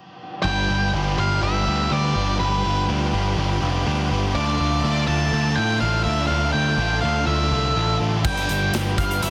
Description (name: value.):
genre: rock, shoegaze and dream pop.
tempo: 123 BPM.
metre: 4/4.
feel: straight.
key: G mixolydian.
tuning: A4 = 440 Hz.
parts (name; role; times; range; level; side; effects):
octave-fuzz lead guitar; melody; 0.4-9.3 s; B4 to A5; -26 LUFS; equal; distortion, tape echo.
analog string pad; sustained chords; 0.9-9.3 s; F4 to D6; -36 LUFS; equal; ensemble chorus, tremolo.
biting overdriven guitar; riff; 0.4-9.3 s; G2 to G4; -29 LUFS; equal; reverse reverb.
overdriven semi-hollow guitar; riff; 0.4-9.3 s; D3 to B4; -31 LUFS; equal; subtle chorus.
growling picked electric bass; bass; 0.4-9.3 s; F1 to A2; -25 LUFS; equal; overdrive.
big rock drum kit; drums; 8.2-9.3 s; crash cymbal, hi-hat, kick drum, snare drum; -27 LUFS; equal; none.
tambourine; percussion; 8.3-9.3 s; none; -40 LUFS; equal; none.
room: little or no reverb.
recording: dense, heavily limited modern master.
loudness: -21 LUFS.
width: mono.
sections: 0.4-9.3 A section.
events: none.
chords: 0.4 G7; 4.3 Dmadd9; 8.3 G7.